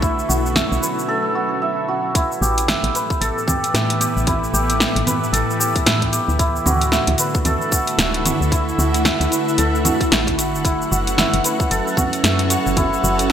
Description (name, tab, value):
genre	organic downtempo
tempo	113 BPM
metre	4/4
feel	swing 59% on 16ths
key	unclear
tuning	A4 = 440 Hz
part	ethereal airy pad	sustained chords	0.0-13.3 s	A2 to F#5	-23 LUFS	equal	ensemble chorus, built-in reverb, sidechain pumping
part	santur	arpeggios	0.0-13.3 s	E4 to E5	-21 LUFS	right 1 dB	vintage 12-bit sampler grit, digital delay
part	woody FM bass	bass	0.0-13.3 s	D1 to A2	-22 LUFS	equal	tube saturation, sidechain pumping
part	deep house drum kit	drums	0.0-13.3 s	congas, hi-hat, shaker, snare drum	-20 LUFS	equal	overdrive
part	electronic kick drum	drums	0.0-12.9 s	none	-21 LUFS	equal	none
room	wet lush hall reverb, RT60 1.8 s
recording	bright 1980s-style digital production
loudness	-16 LUFS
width	side -9 dB against mid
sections	0.0-2.1 A section; 2.1-13.3 B section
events	none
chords	0.0 B7sus4; 2.1 A5; 6.4 D6; 10.6 F#m7